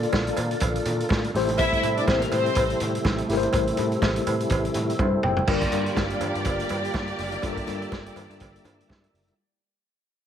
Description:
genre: disco.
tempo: 123 BPM.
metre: 4/4.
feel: swing 56% on 16ths.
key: G dorian.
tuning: A4 = 440 Hz.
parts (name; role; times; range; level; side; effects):
mellow tine electric piano; accompaniment; 0.0-9.4 s; G3 to G5; -28 LUFS; left 5 dB; medium stereo tremolo.
tonewheel organ; sustained chords; 0.0-9.4 s; C3 to E5; -30 LUFS; right 2 dB; chorus vibrato, slow rotary speaker.
vintage muted picked electric bass; bass; 0.0-9.3 s; F#1 to Bb2; -30 LUFS; right 1 dB; none.
vintage drum kit; drums; 0.0-9.4 s; crash cymbal, hi-hat, kick drum, snare drum, toms; -28 LUFS; right 1 dB; none.
congas; percussion; 0.1-9.4 s; none; -38 LUFS; left 5 dB; none.
cowbell; percussion; 0.1-9.0 s; none; -34 LUFS; right 6 dB; none.
dark studio string section; second line; 1.6-9.3 s; Bb3 to E5; -27 LUFS; left 1 dB; tape echo.
room: light reverb.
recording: none.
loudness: -22 LUFS.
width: side -9 dB against mid.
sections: 0.0-5.5 A section; 5.5-9.4 B section.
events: tine electric piano fill 4.8-5.5; drum fill 5.0-5.5; fade-out 5.5-9.4.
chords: 0.0 Bbmaj7; 1.3 Am7; 5.5 Gm7.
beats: 0.13 0.61 1.10 | 1.59 2.07 2.56 3.05 | 3.54 4.02 4.51 5.00 | 5.48 5.97 6.46 6.95 | 7.43 7.92 8.41 8.90.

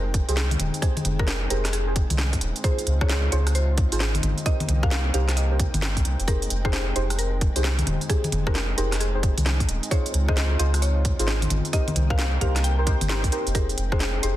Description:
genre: UK garage, two-step garage.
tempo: 132 BPM.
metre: 4/4.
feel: swing 64% on 16ths.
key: F minor.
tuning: A4 = 443 Hz.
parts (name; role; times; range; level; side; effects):
mallet-like synth pluck; melody; 0.0-14.4 s; Ab4 to G5; -34 LUFS; equal; chorus, digital delay.
warm analog pad; sustained chords; 0.0-14.4 s; Ab3 to G5; -36 LUFS; right 2 dB; chorus, sidechain pumping.
soft dub sub bass; bass; 0.0-14.4 s; Eb1 to Eb2; -24 LUFS; equal; sidechain pumping.
electronic kick drum; drums; 0.1-14.0 s; none; -25 LUFS; equal; none.
garage drum kit; drums; 0.1-14.3 s; congas, hi-hat, rim click, snare drum; -28 LUFS; equal; soft clipping on snare.
deep mellow chord stab; stabs; 0.3-14.4 s; Eb4 to C5; -31 LUFS; equal; analog chorus, digital delay.
room: little or no reverb.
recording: dense, heavily limited modern master.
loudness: -21 LUFS.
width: side -14 dB against mid.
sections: 0.0-14.4 A section.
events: none.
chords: 0.0 Fm9; 2.6 Dbmaj9; 4.5 Cm7; 6.3 Fm9; 9.9 Dbmaj9; 11.7 Cm7; 13.6 Fm9.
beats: 0.37 | 0.82 1.28 1.73 2.19 | 2.64 3.10 3.55 4.00 | 4.46 4.91 5.37 5.82 | 6.28 6.73 7.19 7.64 | 8.10 8.55 9.00 9.46 | 9.91 10.37 10.82 11.28 | 11.73 12.19 12.64 13.10 | 13.55 14.00.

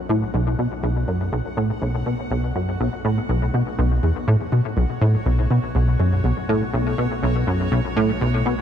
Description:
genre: ambient, sequencer-driven space music.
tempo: 122 BPM.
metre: 4/4.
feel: straight.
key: unclear.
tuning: A4 = 441 Hz.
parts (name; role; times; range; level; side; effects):
warm sub bass; bass; 0.0-8.6 s; B1; -39 LUFS; equal; none.
bubbling stepped-filter texture; texture; 0.0-8.6 s; F#4 to F#5; -35 LUFS; right 1 dB; chorus, built-in reverb.
plucky analog bass; riff; 0.1-8.5 s; B1 to B2; -19 LUFS; equal; ensemble chorus, ping-pong delay.
room: moderate huge ambient reverb, RT60 8.3 s.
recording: none.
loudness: -19 LUFS.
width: side -9 dB against mid.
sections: 0.0-8.6 A section.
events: fade-in on synth texture 0.0-8.6.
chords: 0.0 B5.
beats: 0.34 | 0.83 1.32 1.82 2.31 | 2.80 3.29 3.78 4.28 | 4.77 5.26 5.75 6.24 | 6.73 7.23 7.72 8.21.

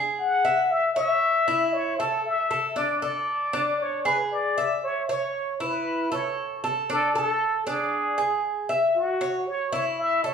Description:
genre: latin.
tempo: 116 BPM.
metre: 4/4.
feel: straight.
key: unclear.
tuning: A4 = 441 Hz.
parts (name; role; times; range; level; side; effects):
Cuban tres; arpeggios; 0.0-10.3 s; D4 to E5; -26 LUFS; right 1 dB; none.
trumpet with plunger mute; melody; 0.2-10.3 s; F#4 to F#5; -24 LUFS; left 2 dB; none.
room: wet large studio reverb, RT60 1.1 s.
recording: band playing live in one room, small room ambience.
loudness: -22 LUFS.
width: side -6 dB against mid.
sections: 0.0-8.9 A section; 8.9-10.3 B section.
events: none.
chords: 0.0 E; 0.7 C#m; 1.7 A/E; 2.8 D5; 3.8 E7; 4.8 C#m7; 5.9 Aadd9/E; 6.9 D5; 7.9 E7; 8.9 C#madd11.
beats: 0.19 | 0.71 1.22 1.74 2.25 | 2.77 3.28 3.80 4.31 | 4.83 5.34 5.86 6.37 | 6.89 7.40 7.92 8.43 | 8.95 9.46 9.98.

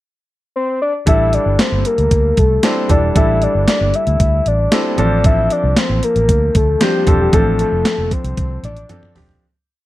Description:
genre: 1980s-style pop.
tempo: 115 BPM.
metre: 4/4.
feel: straight.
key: F major.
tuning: A4 = 438 Hz.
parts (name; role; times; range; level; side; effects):
soft octave-layered synth lead; melody; 0.6-9.1 s; G4 to E5; -17 LUFS; left 2 dB; chorus, slapback echo.
clear baby grand piano; accompaniment; 1.1-9.4 s; F3 to C5; -21 LUFS; right 1 dB; none.
vintage muted fingered electric bass; bass; 1.1-9.4 s; E1 to D2; -17 LUFS; equal; none.
gated 80s digital drum machine; drums; 1.1-9.4 s; hi-hat, kick drum, snare drum, toms; -16 LUFS; equal; gated reverb, gated reverb snare.
room: little or no reverb.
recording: dry, close 1970s-style studio recording.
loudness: -12 LUFS.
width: side -16 dB against mid.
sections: 0.0-1.1 pickup bar; 1.1-9.4 verse.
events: fade-out 7.3-9.4; drum fill 8.4-9.4.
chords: 0.0 N.C.; 1.1 A7sus4; 5.0 F6.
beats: 0.03 0.55 | 1.07 1.59 2.11 2.63 | 3.16 3.68 4.20 4.72 | 5.24 5.76 6.29 6.81 | 7.33 7.85 8.37 8.90.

